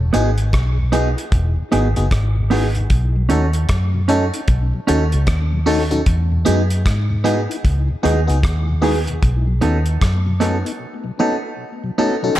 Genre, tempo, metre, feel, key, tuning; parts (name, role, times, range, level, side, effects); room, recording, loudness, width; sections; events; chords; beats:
lovers rock reggae; 76 BPM; 4/4; swing 62% on 16ths; E major; A4 = 440 Hz
mellow tonewheel organ; accompaniment; 0.0-12.3 s; E2 to G#4; -28 LUFS; left 4 dB; chorus vibrato, slow rotary speaker, tape echo
vintage muted fingered electric bass; bass; 0.0-10.6 s; E1 to G#2; -17 LUFS; equal
FM electric piano; accompaniment; 0.1-12.3 s; B3 to A4; -23 LUFS; left 3 dB; chorus, phaser
mellow electric guitar; stabs; 0.1-12.3 s; B3 to A4; -23 LUFS; right 6 dB; spring reverb
cloth-damped thuddy drum kit; drums; 0.1-10.8 s; hi-hat, kick drum, rim click; -21 LUFS; equal
light reverb, small room ambience; dark, warm production; -15 LUFS; side -14 dB against mid
0.0-12.4 A section
break 10.8-12.4
0.0 Emaj7; 2.9 B9; 6.1 Emaj7; 9.2 B7
0.53 1.32 2.11 | 2.90 3.69 4.48 5.27 | 6.06 6.86 7.64 8.44 | 9.23 10.02 10.81 11.60